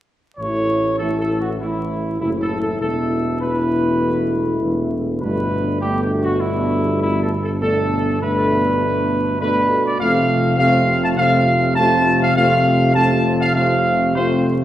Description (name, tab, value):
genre	classical, ceremonial fanfare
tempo	100 BPM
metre	4/4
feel	straight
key	unclear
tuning	A4 = 438 Hz
part	mellow trumpet section	melody	0.4-14.4 s	E4 to A5	-20 LUFS	equal	none
part	mellow trombone section	sustained chords	0.4-14.6 s	A2 to A3	-23 LUFS	right 1 dB	none
part	warm French horn section	sustained chords	0.4-14.6 s	A3 to F4	-24 LUFS	left 2 dB	none
part	mellow tuba	bass	0.4-14.6 s	E1 to A1	-21 LUFS	right 1 dB	none
room	wet scoring stage reverb, RT60 1.4 s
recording	heard from further back in the room, vinyl crackle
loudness	-16 LUFS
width	side -12 dB against mid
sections	0.4-14.6 A section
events	none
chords	0.4 A; 2.8 Esus4; 5.2 Gadd9; 10.0 F